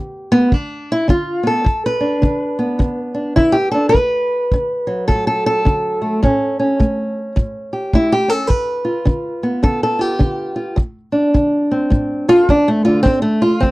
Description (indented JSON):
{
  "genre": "acoustic country blues, solo or duo",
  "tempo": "105 BPM",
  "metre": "4/4",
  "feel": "swing 61% on 8ths",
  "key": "unclear",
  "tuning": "A4 = 436 Hz",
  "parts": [
    { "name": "fingerpicked old ladder-braced acoustic guitar", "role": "melody", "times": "0.0-13.7 s", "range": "D2 to B4", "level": "-15 LUFS", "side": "equal", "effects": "none" },
    { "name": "kick drum", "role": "drums", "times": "0.5-13.7 s", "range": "none", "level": "-16 LUFS", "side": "equal", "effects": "none" }
  ],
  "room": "light reverb",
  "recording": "dry, close 1970s-style studio recording",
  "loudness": "-14 LUFS",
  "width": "side -20 dB against mid",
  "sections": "0.0-13.7 A section",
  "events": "steel-string acoustic guitar solo 0.0-13.7",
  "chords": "0.0 G; 3.9 D; 6.2 A7; 8.5 G7; 10.8 D5; 13.1 A5",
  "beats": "0.51 1.09 | 1.66 2.23 2.80 3.37 | 3.94 4.51 5.08 5.65 | 6.22 6.79 7.36 7.93 | 8.50 9.07 9.64 10.21 | 10.78 11.35 11.92 12.48 | 13.05 13.62"
}